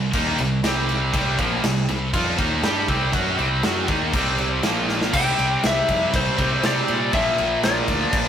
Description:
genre	hard rock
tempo	120 BPM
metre	4/4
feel	straight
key	unclear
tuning	A4 = 439 Hz
part	high-gain distorted guitar	riff	0.0-8.3 s	Bb2 to G4	-22 LUFS	right 1 dB	distortion
part	picked electric bass	bass	0.0-8.3 s	Bb1 to C3	-27 LUFS	equal	none
part	gated 80s drum kit	drums	0.1-8.3 s	crash cymbal, kick drum, snare drum	-24 LUFS	equal	none
part	lightly driven lead guitar	melody	5.1-8.3 s	C5 to G5	-22 LUFS	left 3 dB	none
room	moderate stone room reverb, RT60 1.2 s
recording	rough rehearsal-room recording, warm saturation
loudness	-18 LUFS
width	side -9 dB against mid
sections	0.0-5.1 A section; 5.1-8.3 B section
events	drum fill 4.9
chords	0.0 C5; 4.6 Bb5; 5.1 C; 7.1 Bb

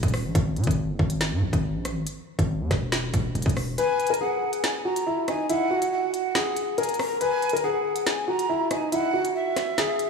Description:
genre	hip hop, drill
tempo	140 BPM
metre	4/4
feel	half-time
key	unclear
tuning	A4 = 440 Hz
part	distorted 808-style bass	bass	0.0-3.8 s	D#1 to B2	-26 LUFS	equal	distortion
part	drill drum kit	drums	0.0-10.1 s	hi-hat, kick drum, rim click, snare drum	-27 LUFS	equal	none
part	dark baby grand piano	melody	3.8-10.1 s	D#4 to B4	-25 LUFS	left 2 dB	none
part	breathy jazz flute	second line	3.8-10.1 s	E5 to A#5	-28 LUFS	right 2 dB	tape echo
room	moderate concert hall reverb, RT60 2.3 s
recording	studio ambience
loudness	-23 LUFS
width	side -5 dB against mid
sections	0.0-10.1 A section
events	break 0.0-3.8; kick muted 3.8-10.1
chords	0.4 N.C.; 2.1 E; 3.8 N.C.

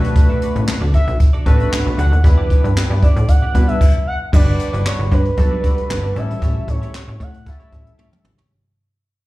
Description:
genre	early-eighties boogie funk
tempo	115 BPM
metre	4/4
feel	straight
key	unclear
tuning	A4 = 439 Hz
part	chorused polysynth	accompaniment	0.0-8.3 s	G3 to B4	-24 LUFS	left 1 dB	slapback echo
part	clean electric guitar	riff	0.0-8.5 s	A3 to E5	-34 LUFS	right 4 dB	lush chorus, slapback echo
part	plucky analog bass	bass	0.0-8.4 s	G1 to B2	-18 LUFS	equal	none
part	jazz brush drum kit	drums	0.0-8.5 s	crash cymbal, handclaps, hi-hat, kick drum, snare drum, toms	-15 LUFS	equal	none
part	expressive portamento lead	melody	0.9-8.3 s	B4 to F#5	-25 LUFS	right 1 dB	chorus, slapback echo
room	little or no reverb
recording	live gig heard through the venue's PA, club reverb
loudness	-13 LUFS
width	side -18 dB against mid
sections	0.0-4.3 A section; 4.3-8.5 B section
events	fade-out 4.3-8.5; drum fill 8.0-8.5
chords	0.0 Bm7; 2.2 Em7; 4.3 Gmaj7; 6.2 A7

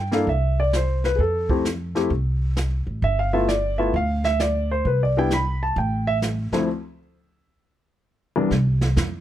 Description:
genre	jazz piano trio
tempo	131 BPM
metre	4/4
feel	swing 67% on 8ths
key	C major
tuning	A4 = 440 Hz
part	warm baby grand piano	melody	0.0-8.5 s	C2 to B5	-22 LUFS	left 1 dB	none
part	upright bass	bass	0.0-9.2 s	G1 to G2	-23 LUFS	equal	none
part	jazz brush drum kit	drums	0.1-9.2 s	brushed snare drum, hi-hat, kick drum, snare drum	-28 LUFS	right 2 dB	none
room	little or no reverb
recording	close, detailed microphones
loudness	-20 LUFS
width	side -12 dB against mid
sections	0.0-8.5 A section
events	break 6.7-8.5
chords	0.3 C; 1.2 F; 3.0 G7(no3); 4.8 Cmaj7sus2; 5.8 A5; 6.7 N.C.

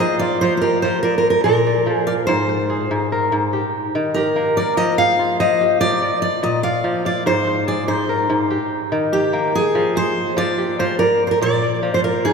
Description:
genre	west african traditional, West African string and xylophone music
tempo	96 BPM (dotted quarters)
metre	12/8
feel	straight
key	unclear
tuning	A4 = 440 Hz
part	fingerpicked steel-string acoustic guitar	melody	0.0-12.3 s	G4 to F5	-18 LUFS	right 1 dB	none
part	kora	arpeggios	0.0-12.3 s	Ab2 to F5	-20 LUFS	left 1 dB	none
room	wet cathedral reverb, RT60 4.9 s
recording	recorded in a church or concert hall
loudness	-16 LUFS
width	side -5 dB against mid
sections	0.0-12.3 A section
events	none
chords	0.0 Fm; 1.0 Bb; 2.3 Ab; 3.5 Eb; 4.8 Fm; 6.0 Bb; 7.3 Ab; 8.5 Eb; 9.7 Fm; 11.0 Bb

